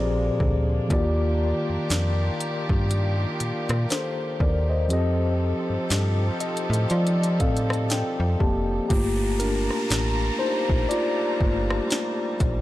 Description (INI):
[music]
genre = contemporary R&B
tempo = 60 BPM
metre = 4/4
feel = swing 58% on 16ths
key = G minor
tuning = A4 = 440 Hz
[part]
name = mellow tine electric piano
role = accompaniment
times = 0.0-12.6 s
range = Bb2 to A5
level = -26 LUFS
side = left 1 dB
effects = medium stereo tremolo
[part]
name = dark studio string section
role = sustained chords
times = 0.0-12.6 s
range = Eb3 to Bb5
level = -32 LUFS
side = equal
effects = none
[part]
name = slap-like FM bass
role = bass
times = 0.0-12.6 s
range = F1 to F3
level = -24 LUFS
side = equal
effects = none
[part]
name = smooth R&B drum kit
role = drums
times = 0.4-12.6 s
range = hi-hat, kick drum, rim click, snare drum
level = -26 LUFS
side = equal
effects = none
[part]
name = downlifter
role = sound effects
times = 8.9-12.6 s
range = none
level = -36 LUFS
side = left 2 dB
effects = none
[sound]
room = little or no reverb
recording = dry, gritty hardware recording, transformer saturation, cassette tape, lossy compression artefacts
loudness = -21 LUFS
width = side -15 dB against mid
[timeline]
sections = 0.0-8.9 A section; 8.9-12.6 B section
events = tine electric piano fill 5.9-8.9; tine electric piano solo 8.9-12.6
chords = 0.0 Bb13; 0.9 Ebmaj9; 4.9 F9; 8.9 Gm7